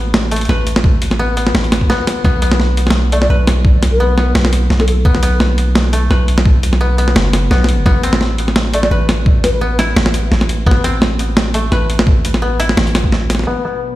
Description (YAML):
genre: half-time drum and bass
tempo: 171 BPM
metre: 4/4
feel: swing 54% on 16ths, half-time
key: unclear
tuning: A4 = 440 Hz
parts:
  - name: koto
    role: arpeggios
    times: 0.0-14.0 s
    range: A3 to B4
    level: -20 LUFS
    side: left 2 dB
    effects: low-pass filter, digital delay
  - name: long sustained 808-style bass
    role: bass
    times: 0.0-13.5 s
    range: F#1 to B1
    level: -15 LUFS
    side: equal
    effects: none
  - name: boom bap sampler-style drum kit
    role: drums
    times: 0.1-13.5 s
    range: hi-hat, snare drum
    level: -16 LUFS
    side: equal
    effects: low-pass filter on snare, studio reverb, low-pass filter on hats
  - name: electronic kick drum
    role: drums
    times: 0.8-13.1 s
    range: none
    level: -11 LUFS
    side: equal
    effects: studio reverb
  - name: mellow hollow concert flute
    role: melody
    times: 3.1-4.9, 8.7-9.6 s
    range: A4 to D5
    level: -22 LUFS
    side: left 1 dB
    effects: digital delay
  - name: dark analog pad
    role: sustained chords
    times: 13.6-14.0 s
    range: B3 to D5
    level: -30 LUFS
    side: left 4 dB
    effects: chorus, sidechain pumping
room: light reverb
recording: played on a big sound system in a bare room, stone room reverb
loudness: -11 LUFS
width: side -16 dB against mid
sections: 0.0-13.5 A section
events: kick drops out 13.1-13.5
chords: 0.0 N.C.; 2.2 B5; 7.9 Am